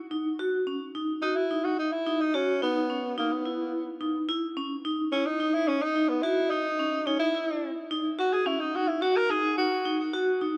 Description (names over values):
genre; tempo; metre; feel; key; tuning
progressive instrumental, progressive; 215 BPM (eighths); 7/8; straight; F# mixolydian; A4 = 440 Hz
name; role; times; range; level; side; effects
vibraphone with hard mallets; arpeggios; 0.1-10.6 s; C#4 to F#4; -31 LUFS; equal; none
clear tenor saxophone; melody; 1.2-10.1 s; A#3 to A#4; -30 LUFS; equal; tape echo
room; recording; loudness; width
moderate plate reverb, RT60 2.8 s; dark, warm production; -28 LUFS; mono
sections
0.4-10.6 A section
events
tenor saxophone solo 0.4-10.6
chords
0.0 F#5; 4.3 Badd11 (rootless); 6.2 C#madd9 (rootless)